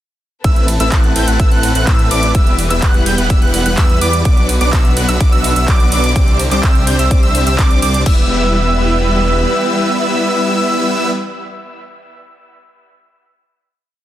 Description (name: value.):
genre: EDM, festival progressive house.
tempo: 126 BPM.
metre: 4/4.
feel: straight.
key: E minor.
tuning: A4 = 441 Hz.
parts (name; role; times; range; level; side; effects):
warm studio string section; sustained chords; 0.4-11.1 s; D3 to C5; -23 LUFS; left 2 dB; sidechain pumping.
wide unison lead; arpeggios; 0.4-11.1 s; D6 to G6; -20 LUFS; right 1 dB; lush chorus, sidechain pumping, dub echo.
supersaw chords; riff; 0.4-11.1 s; F#3 to G5; -18 LUFS; equal; sidechain pumping, dub echo.
detuned saw bass; bass; 0.4-9.5 s; E1 to A2; -17 LUFS; equal; sidechain pumping.
big-room dance drum kit; drums; 0.4-8.2 s; crash cymbal, handclaps, hi-hat, ride cymbal; -22 LUFS; right 2 dB; studio reverb.
electronic kick drum; drums; 0.4-8.2 s; none; -12 LUFS; equal; studio reverb.
room: digital ambience.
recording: dense, heavily limited modern master.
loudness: -11 LUFS.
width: side -13 dB against mid.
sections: 0.4-8.1 drop; 8.1-11.9 final chord.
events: drop 0.4-8.1.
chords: 0.4 Amadd9; 2.3 Em; 4.3 Bm; 6.2 Csus2; 8.1 Em.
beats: | 0.44 0.92 1.40 1.87 | 2.35 2.82 3.30 3.78 | 4.25 4.73 5.21 5.68 | 6.16 6.63 7.11 7.59 | 8.06 8.54 9.02 9.49 | 9.97 10.44 10.92.